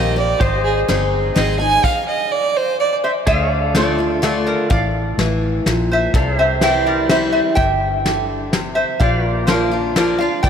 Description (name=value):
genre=honky-tonk and classic country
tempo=126 BPM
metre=3/4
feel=straight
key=D minor from 3.3 s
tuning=A4 = 436 Hz
part: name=rich fiddle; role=second line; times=0.0-2.9 s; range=Ab4 to Ab5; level=-20 LUFS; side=right 4 dB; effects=ping-pong delay
part: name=picked steel-string acoustic guitar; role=accompaniment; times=0.0-10.5 s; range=F2 to Ab4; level=-21 LUFS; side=left 2 dB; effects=none
part: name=pedal steel guitar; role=sustained chords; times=0.0-10.5 s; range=F4 to F5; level=-26 LUFS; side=equal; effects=lush chorus
part: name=vintage muted fingered electric bass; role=bass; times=0.0-10.5 s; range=F1 to D2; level=-22 LUFS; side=equal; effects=none
part: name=soft brush drum kit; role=drums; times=0.4-10.5 s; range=crash cymbal, hi-hat, kick drum, snare drum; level=-22 LUFS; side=left 1 dB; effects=none
part: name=lap resonator guitar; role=melody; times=3.0-10.5 s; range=A4 to G5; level=-20 LUFS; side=equal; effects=lush chorus
room=wet cathedral reverb, RT60 4.8 s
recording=dreamy mix soaked in reverb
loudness=-15 LUFS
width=side -7 dB against mid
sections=0.0-3.3 A section; 3.3-10.5 B section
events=fiddle solo 0.0-3.3; stop 1.8-3.3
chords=0.4 Ab; 1.8 N.C.; 3.3 Dm; 6.1 C; 9.0 Bb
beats=| 0.41 0.89 1.37 | 1.84 2.32 2.80 | 3.28 3.75 4.23 | 4.71 5.19 5.66 | 6.14 6.62 7.10 | 7.57 8.05 8.53 | 9.01 9.48 9.96 | 10.44